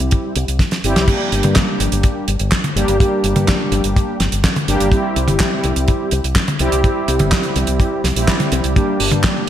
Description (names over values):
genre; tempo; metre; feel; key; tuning
italo disco; 125 BPM; 4/4; straight; G dorian; A4 = 440 Hz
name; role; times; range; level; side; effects
mellow synth brass; stabs; 0.0-9.5 s; G3 to G4; -19 LUFS; equal; chorus, ping-pong delay
fingered electric bass with an envelope filter; bass; 0.0-9.2 s; G1 to G2; -20 LUFS; equal; tube saturation
damped 70s drum kit; drums; 0.0-9.3 s; crash cymbal, handclaps, hi-hat, snare drum, toms; -19 LUFS; right 1 dB; studio reverb, gated reverb
kick drum; drums; 0.1-9.3 s; none; -15 LUFS; equal; studio reverb
room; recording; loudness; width
moderate plate reverb, RT60 2.1 s; bright 1980s-style digital production; -14 LUFS; side -11 dB against mid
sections
0.0-1.1 A section; 1.1-9.5 B section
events
filter sweep on analog polysynth 0.0-1.1; drum fill 0.6-1.1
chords
0.0 C; 1.1 Gm; 4.9 C; 8.8 Gm